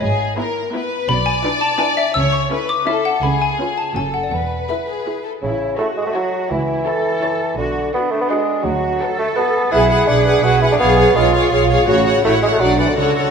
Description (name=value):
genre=cinematic, playful, whimsical film cue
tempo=167 BPM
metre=3/4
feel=straight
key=A major, F# minor from 9.7 s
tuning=A4 = 441 Hz
part: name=xylophone with rubber mallets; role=melody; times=0.0-5.2 s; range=C#5 to E6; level=-21 LUFS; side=left 4 dB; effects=none
part: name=rich studio violin section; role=second line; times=0.0-13.3 s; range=G#4 to D5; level=-22 LUFS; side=left 3 dB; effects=none
part: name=dark studio double bass section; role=bass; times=0.0-13.3 s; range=E1 to D2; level=-22 LUFS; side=right 4 dB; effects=none
part: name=warm studio cello section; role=bass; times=0.0-13.3 s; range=E2 to A4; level=-23 LUFS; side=right 2 dB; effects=none
part: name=rich studio violin section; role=melody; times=0.4-13.3 s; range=G#4 to F#5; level=-26 LUFS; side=left 3 dB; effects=none
part: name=warm studio viola section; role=accompaniment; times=0.4-13.3 s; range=B3 to A4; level=-23 LUFS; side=left 1 dB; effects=none
part: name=warm bassoon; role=accompaniment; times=5.4-13.3 s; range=C#3 to F#4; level=-17 LUFS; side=right 1 dB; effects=none
room=wet scoring stage reverb, RT60 2.0 s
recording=none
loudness=-15 LUFS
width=side -6 dB against mid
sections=0.0-5.4 A section; 5.4-13.3 B section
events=none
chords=0.0 E/G#; 1.1 E7/B; 2.2 A/C#; 3.2 C#7; 4.0 F#m; 4.3 E; 5.4 A; 6.5 A/C#; 7.6 Bm; 8.7 Bm/D; 9.7 G#m7b5/B; 10.8 C#7/B; 11.9 F#m/A; 12.6 Bm